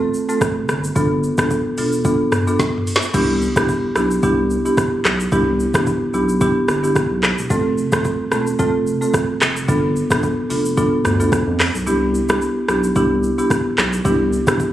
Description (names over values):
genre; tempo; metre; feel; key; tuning
afrobeats; 110 BPM; 4/4; swing 55% on 16ths; C major; A4 = 440 Hz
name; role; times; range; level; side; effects
marimba with medium mallets; accompaniment; 0.0-14.7 s; A3 to A4; -18 LUFS; equal; none
afro-pop drum kit; drums; 0.1-14.7 s; crash cymbal, handclaps, hi-hat, kick drum, rim click, shaker, snare drum, toms; -20 LUFS; equal; overdrive
saturated sub bass; bass; 0.4-14.6 s; E1 to F2; -23 LUFS; equal; none
room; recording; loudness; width
light reverb, digital ambience; recorded on a phone in the room, studio reverb, compression; -15 LUFS; side -12 dB against mid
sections
0.0-3.1 A section; 3.1-14.7 B section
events
drum fill 2.6-3.1; kick muted 11.9-13.0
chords
0.0 F; 1.0 G7; 3.1 Cmaj7; 7.5 F; 9.7 G7; 11.9 Cmaj7